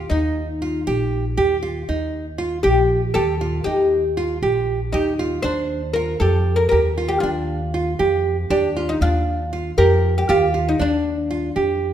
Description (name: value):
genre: contemporary instrumental, chamber music in an uneven meter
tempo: 236 BPM (eighths)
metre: 7/8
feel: straight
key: Eb lydian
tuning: A4 = 440 Hz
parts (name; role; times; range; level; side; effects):
- oud; melody; 0.0-11.8 s; D4 to C5; -22 LUFS; left 2 dB; none
- nylon-string guitar; arpeggios; 0.0-11.9 s; D4 to G4; -22 LUFS; right 4 dB; none
- upright bass; bass; 0.0-11.9 s; Bb1 to F2; -23 LUFS; equal; none
room: moderate recital hall reverb, RT60 1.7 s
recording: none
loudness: -18 LUFS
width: side -10 dB against mid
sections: 0.0-11.9 A section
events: none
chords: 0.0 Eb; 5.4 Ebmaj9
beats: | 0.11 0.36 0.62 0.87 1.12 1.38 1.63 | 1.89 2.14 2.40 2.65 2.90 3.16 3.41 | 3.67 3.92 4.18 4.43 4.68 4.94 5.19 | 5.45 5.70 5.96 6.21 6.46 6.72 6.97 | 7.23 7.48 7.74 7.99 8.25 8.50 8.76 | 9.01 9.27 9.52 9.77 10.03 10.28 10.54 | 10.79 11.05 11.30 11.56 11.81